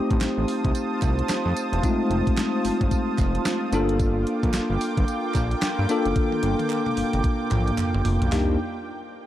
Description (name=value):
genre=R&B, new jack swing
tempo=111 BPM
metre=4/4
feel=swing 61% on 16ths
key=unclear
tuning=A4 = 442 Hz
part: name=bell-like tine electric piano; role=accompaniment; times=0.0-8.6 s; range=Ab3 to A4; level=-25 LUFS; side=left 2 dB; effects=shimmer reverb
part: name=lush unison pad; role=sustained chords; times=0.0-8.6 s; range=Bb3 to Eb6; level=-29 LUFS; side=right 2 dB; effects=chorus, shimmer reverb
part: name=fat analog bass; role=bass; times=0.1-8.6 s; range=E1 to G2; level=-25 LUFS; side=equal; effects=none
part: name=crisp 8-bit digital drum machine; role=drums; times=0.1-8.5 s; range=hi-hat, kick drum, snare drum, tambourine, toms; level=-26 LUFS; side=equal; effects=none
part: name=group handclap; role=percussion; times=0.2-8.6 s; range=none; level=-41 LUFS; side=right 7 dB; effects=none
room=moderate plate reverb, RT60 2.5 s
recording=dark, warm production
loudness=-21 LUFS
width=side -13 dB against mid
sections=0.0-8.3 A section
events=drum fill 6.2-8.3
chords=0.0 F7; 3.7 Gm7; 8.3 Cm7